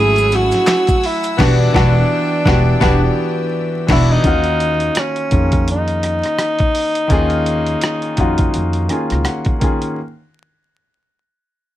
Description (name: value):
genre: R&B, neo-soul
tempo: 84 BPM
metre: 4/4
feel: swing 58% on 16ths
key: unclear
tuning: A4 = 440 Hz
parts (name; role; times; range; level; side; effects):
- breathy tenor saxophone; melody; 0.0-9.2 s; Db4 to Ab4; -18 LUFS; equal; slapback echo
- warm concert grand piano; accompaniment; 0.0-10.0 s; Eb3 to Ab5; -20 LUFS; left 2 dB; none
- clear studio string section; sustained chords; 0.0-4.2 s; A3 to Fb6; -28 LUFS; left 2 dB; none
- warm horn section; stabs; 0.0-4.1 s; B3 to Ab4; -23 LUFS; right 1 dB; none
- upright bass; bass; 0.0-9.2 s; E1 to F2; -17 LUFS; equal; none
- dusty soul sampler-style drum kit; drums; 0.2-10.0 s; crash cymbal, handclaps, hi-hat, kick drum, rim click, snare drum; -18 LUFS; equal; overdrive
- maracas and finger snaps; percussion; 0.2-1.4 s; none; -32 LUFS; left 1 dB; none
room: light reverb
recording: vinyl crackle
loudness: -13 LUFS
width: side -13 dB against mid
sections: 0.0-4.2 A section; 4.2-10.0 B section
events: band accent 1.4-4.2; grand piano fill 8.5-10.0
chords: 0.0 Gbm9; 1.4 Em9; 4.2 Ebm9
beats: 0.68 | 1.39 2.10 2.82 3.53 | 4.25 4.96 5.67 6.39 | 7.10 7.82 8.53 9.25